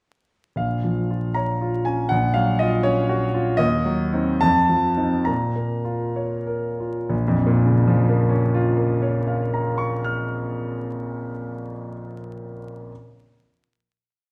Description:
classical, romantic character piece for solo piano; 61-82 BPM (dotted quarters); 6/8; rubato; Bb minor; A4 = 443 Hz
clear concert grand piano; solo; 0.6-12.9 s; Bb1 to F6; -22 LUFS; equal
wet recital hall reverb, RT60 1.4 s; vinyl crackle; -22 LUFS; mono
0.6-7.1 A section; 7.1-10.7 final chord
slowing down 2.9-7.1
0.6 Bbm; 2.1 Gbmaj7/Bb; 3.6 Cdim/Eb; 4.4 F7; 5.3 Bbm

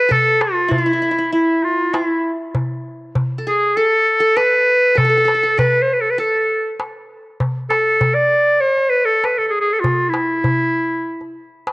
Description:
Arabic maqam ensemble; 98 BPM; 4/4; straight; A maqam suznak; A4 = 440 Hz
bright clarinet; melody; 0.0-11.5 s; E4 to D5; -14 LUFS; equal; cassette tape
qanun; second line; 0.0-7.4 s; E4 to B4; -24 LUFS; right 1 dB; cassette tape
darbuka; percussion; 0.1-11.7 s; -21 LUFS; equal
moderate spring reverb, RT60 2.7 s; home recording on cassette; -14 LUFS; side -22 dB against mid
0.0-7.4 A section; 7.4-11.7 B section

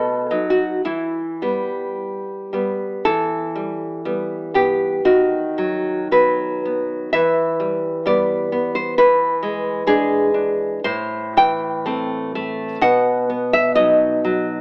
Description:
romantic piece for solo classical guitar; 53-68 BPM; 2/4; rubato; E minor; A4 = 440 Hz
nylon-string guitar; solo; 0.0-14.6 s; A2 to G5; -20 LUFS; equal
light reverb; AM radio sound; -20 LUFS; mono
0.0-3.1 A section; 3.1-14.6 A section
0.0 B7; 0.9 Em; 5.1 B/D#; 7.1 Em; 9.0 E7; 10.8 Am; 12.8 B

